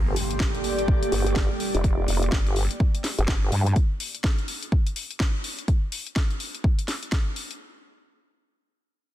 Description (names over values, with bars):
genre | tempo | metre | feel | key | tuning
bass house | 125 BPM | 4/4 | swing 60% on 16ths | G minor | A4 = 440 Hz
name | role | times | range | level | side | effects
deep dark ambient pad | sustained chords | 0.3-1.8 s | G3 to A4 | -33 LUFS | right 4 dB | chorus, built-in reverb, sidechain pumping
vowel-sweep wobble bass | bass | 0.0-3.7 s | F1 to G2 | -23 LUFS | equal | chorus, tube saturation, sidechain pumping
impact | sound effects | 0.0-1.8 s | none | -33 LUFS | equal | none
airy breathy pad | texture | 0.1-3.8 s | G4 to C6 | -31 LUFS | equal | chorus, sidechain pumping
house drum kit | drums | 0.2-7.6 s | hi-hat, snare drum | -31 LUFS | left 1 dB | overdrive
electronic kick drum | drums | 0.4-7.2 s | none | -23 LUFS | equal | overdrive
room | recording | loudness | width
digital ambience | dense, heavily limited modern master | -22 LUFS | side -13 dB against mid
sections
0.0-7.6 A section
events
fade-out on analog synth pad 0.0-3.8; impact 0.0-1.8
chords
0.0 Gmadd9